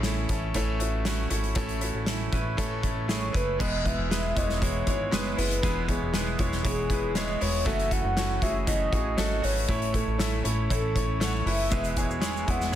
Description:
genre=piano-driven pop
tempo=118 BPM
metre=4/4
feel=straight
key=E major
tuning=A4 = 440 Hz
part: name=clear concert grand piano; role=accompaniment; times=0.0-12.8 s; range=A2 to E5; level=-31 LUFS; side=left 2 dB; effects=none
part: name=direct-recorded clean electric guitar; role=riff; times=0.0-12.7 s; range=E2 to F#4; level=-35 LUFS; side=right 5 dB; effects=none
part: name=chorused synth bass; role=bass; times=0.0-12.8 s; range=E1 to A1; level=-30 LUFS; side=equal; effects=none
part: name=loose indie drum kit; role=drums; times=0.0-12.7 s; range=crash cymbal, hi-hat, kick drum, snare drum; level=-30 LUFS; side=equal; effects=none
part: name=mellow horn-like synth lead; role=melody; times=3.1-12.8 s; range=G#4 to G#5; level=-31 LUFS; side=equal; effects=chorus
part: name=tube shaker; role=percussion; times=11.7-12.8 s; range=none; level=-43 LUFS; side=right 8 dB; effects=none
room=light reverb, small room ambience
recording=dense, heavily limited modern master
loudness=-24 LUFS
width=side -11 dB against mid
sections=0.0-3.6 A section; 3.6-12.8 B section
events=none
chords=0.0 A; 3.6 E; 7.7 F#m7; 9.7 A; 11.7 E

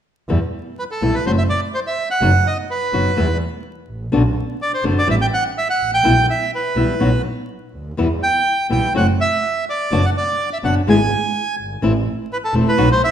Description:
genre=tango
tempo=125 BPM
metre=4/4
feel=rubato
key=E minor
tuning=A4 = 440 Hz
part: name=flamenco guitar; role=accompaniment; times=0.3-12.9 s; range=B2 to G#4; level=-20 LUFS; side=left 2 dB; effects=none
part: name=rich double bass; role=bass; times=0.3-13.0 s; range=E1 to E2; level=-20 LUFS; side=right 1 dB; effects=none
part: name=bandoneon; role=melody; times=0.8-13.1 s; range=A4 to G#5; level=-18 LUFS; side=right 2 dB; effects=none
room=moderate scoring stage reverb, RT60 1.5 s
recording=minimal, uncompressed stereo recording, vinyl crackle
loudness=-16 LUFS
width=side -9 dB against mid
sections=0.3-13.1 A section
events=none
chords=0.3 Em; 1.3 N.C.; 2.2 B/F#; 3.2 E5; 4.1 Bm; 5.1 A7(no3); 6.0 Em/B; 7.0 B5; 8.0 Em; 8.9 N.C.; 9.9 Bm/F#; 10.9 N.C.; 11.8 Am

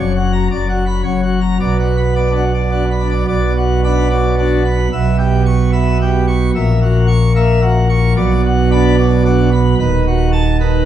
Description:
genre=classical, organ toccata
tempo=110 BPM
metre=3/4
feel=straight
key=B minor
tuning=A4 = 440 Hz
part: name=pipe organ, plenum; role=solo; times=0.0-10.9 s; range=D#1 to C#6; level=-12 LUFS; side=right 1 dB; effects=none
room=wet stone room reverb, RT60 1.3 s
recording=dark, warm production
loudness=-12 LUFS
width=side -11 dB against mid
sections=0.0-3.3 A section; 3.3-10.9 B section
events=none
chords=0.5 Bm/F#; 1.0 F#; 1.6 Bm; 4.9 C#m7b5/B; 6.5 F#7/A#; 8.2 Bm; 9.8 B7/D#

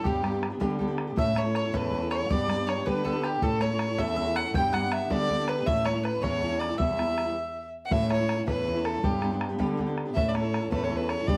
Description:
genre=celtic folk, Celtic jig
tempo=107 BPM (dotted quarters)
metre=6/8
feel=straight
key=unclear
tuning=A4 = 444 Hz
part: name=dark fiddle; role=melody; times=0.0-11.4 s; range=G4 to G5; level=-32 LUFS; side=equal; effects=plate reverb
part: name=mandolin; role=second line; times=0.0-7.7 s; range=G4 to G5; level=-37 LUFS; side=equal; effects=none
part: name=fingerpicked steel-string acoustic guitar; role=accompaniment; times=0.0-11.4 s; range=A2 to A4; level=-33 LUFS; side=equal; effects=none
part: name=muted cello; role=bass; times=0.0-11.4 s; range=E2 to D3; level=-34 LUFS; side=equal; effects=none
part: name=bodhran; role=percussion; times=0.1-11.4 s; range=none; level=-35 LUFS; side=equal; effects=none
room=moderate studio reverb, RT60 0.8 s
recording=none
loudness=-28 LUFS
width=mono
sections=0.0-7.9 A section; 7.9-11.4 A section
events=stop 7.3-7.9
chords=0.1 G; 1.2 A; 2.3 G; 3.4 A; 4.5 G; 5.7 A; 6.8 Em; 7.9 A; 9.0 G; 10.2 A

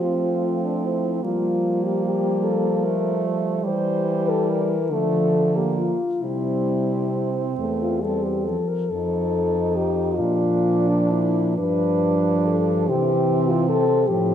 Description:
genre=classical, lyrical piece for horn quartet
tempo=41-50 BPM (dotted quarters)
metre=6/8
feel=rubato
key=unclear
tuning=A4 = 439 Hz
part: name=mellow French horn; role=melody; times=0.0-14.3 s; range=D4 to C5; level=-24 LUFS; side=left 5 dB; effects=none
part: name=clear French horn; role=second line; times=0.0-14.3 s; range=G3 to Eb4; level=-26 LUFS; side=right 8 dB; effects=none
part: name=dark French horn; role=accompaniment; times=0.0-14.3 s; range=E3 to A3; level=-26 LUFS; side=equal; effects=none
part: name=warm French horn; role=bass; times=0.0-14.3 s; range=E2 to F3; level=-26 LUFS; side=right 2 dB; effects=none
room=moderate recital hall reverb, RT60 1.6 s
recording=none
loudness=-19 LUFS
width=side -9 dB against mid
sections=0.0-14.3 A section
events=none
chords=0.0 F; 1.2 Gm7/F; 3.7 C/E; 4.9 Dm; 6.2 C; 8.9 F7; 10.2 Bb; 11.6 G7; 12.9 C

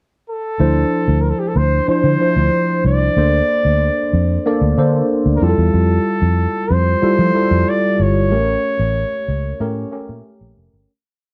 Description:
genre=polished 1980s jazz-funk pop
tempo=93 BPM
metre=4/4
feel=straight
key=D minor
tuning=A4 = 440 Hz
part: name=warm flugelhorn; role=melody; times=0.3-10.3 s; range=G4 to D5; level=-22 LUFS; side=equal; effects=slapback echo
part: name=tine electric piano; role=accompaniment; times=0.6-10.9 s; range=F3 to D5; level=-21 LUFS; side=equal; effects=analog chorus
part: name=vintage muted fingered electric bass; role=bass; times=0.6-10.9 s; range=F1 to F3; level=-18 LUFS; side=equal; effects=none
room=light reverb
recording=dry, close 1970s-style studio recording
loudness=-16 LUFS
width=mono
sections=0.0-0.6 pickup bar; 0.6-10.9 verse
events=fade-out 8.3-10.9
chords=0.0 N.C.; 0.6 Dm9; 3.2 Bbmaj9/D; 5.4 Fmaj9; 8.3 A7b9

